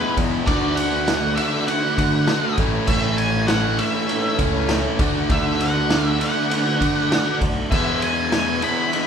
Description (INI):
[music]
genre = classic rock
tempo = 99 BPM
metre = 4/4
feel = straight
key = unclear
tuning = A4 = 441 Hz
[part]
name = octave-fuzz lead guitar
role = melody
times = 0.0-9.1 s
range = B4 to B5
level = -24 LUFS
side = equal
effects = distortion
[part]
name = tonewheel organ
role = sustained chords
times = 0.0-9.1 s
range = C#4 to E5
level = -35 LUFS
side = equal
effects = none
[part]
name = biting overdriven guitar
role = riff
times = 0.0-9.1 s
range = A2 to F#4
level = -28 LUFS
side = left 6 dB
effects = none
[part]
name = crunchy overdriven guitar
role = riff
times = 0.0-9.1 s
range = A2 to F#4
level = -26 LUFS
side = right 5 dB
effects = spring reverb
[part]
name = raw garage guitar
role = riff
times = 0.0-9.1 s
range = E2 to D4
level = -26 LUFS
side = right 1 dB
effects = overdrive
[part]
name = growling fingered electric bass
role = bass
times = 0.0-8.6 s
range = A1 to D3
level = -26 LUFS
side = left 1 dB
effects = overdrive
[part]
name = vintage drum kit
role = drums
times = 0.2-9.1 s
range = crash cymbal, kick drum, ride cymbal, snare drum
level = -23 LUFS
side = equal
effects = none
[sound]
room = moderate large studio reverb, RT60 0.9 s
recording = band playing live in one room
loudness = -18 LUFS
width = side -7 dB against mid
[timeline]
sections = 0.0-9.1 A section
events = none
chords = 0.5 D; 2.6 A; 5.0 D; 7.7 E